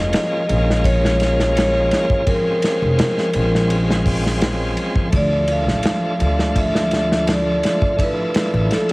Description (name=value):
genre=trip hop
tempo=84 BPM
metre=4/4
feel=straight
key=unclear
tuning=A4 = 435 Hz
part: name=vibraphone with medium hard mallets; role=melody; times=0.0-8.9 s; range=A4 to F5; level=-21 LUFS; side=equal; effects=cassette tape, tape echo, plate reverb
part: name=bright tonewheel organ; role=accompaniment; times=0.0-8.9 s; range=Ab3 to F4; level=-24 LUFS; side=equal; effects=overdrive, fast rotary speaker, tremolo, plate reverb
part: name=warm symphonic string section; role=sustained chords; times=0.0-8.9 s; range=F3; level=-27 LUFS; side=equal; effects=plate reverb
part: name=upright bass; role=bass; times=0.0-8.7 s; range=F1 to D2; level=-20 LUFS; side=equal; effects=tube saturation
part: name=warm soul drum kit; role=drums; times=0.1-8.9 s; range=hi-hat, kick drum, ride cymbal, snare drum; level=-21 LUFS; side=equal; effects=cassette tape
room=moderate studio reverb, RT60 0.6 s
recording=home recording on cassette, vinyl crackle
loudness=-15 LUFS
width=side -24 dB against mid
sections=0.0-8.9 A section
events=none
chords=0.0 Bbm7; 5.1 Dmadd9